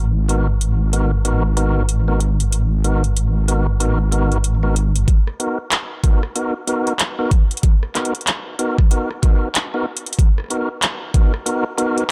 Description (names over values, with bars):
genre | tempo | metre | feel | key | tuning
glitch hop | 94 BPM | 4/4 | swing 61% on 16ths | unclear | A4 = 440 Hz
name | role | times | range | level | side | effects
wobble bass | bass | 0.0-5.1 s | G#1 | -19 LUFS | equal | chorus, tube saturation
tonewheel organ | stabs | 0.3-12.0 s | B3 to A#4 | -25 LUFS | equal | overdrive, fast rotary speaker, vintage 12-bit sampler grit, sidechain pumping, low-pass filter, tape echo
drum and bass drum kit | drums | 0.3-12.1 s | handclaps, hi-hat, rim click | -24 LUFS | equal | none
electronic kick drum | drums | 5.1-11.3 s | none | -16 LUFS | equal | none
room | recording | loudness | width
little or no reverb | dark, warm production | -18 LUFS | mono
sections
0.0-5.1 A section; 5.1-12.1 B section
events
build-up 5.1-12.1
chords
0.0 G#m9; 5.1 Bmaj7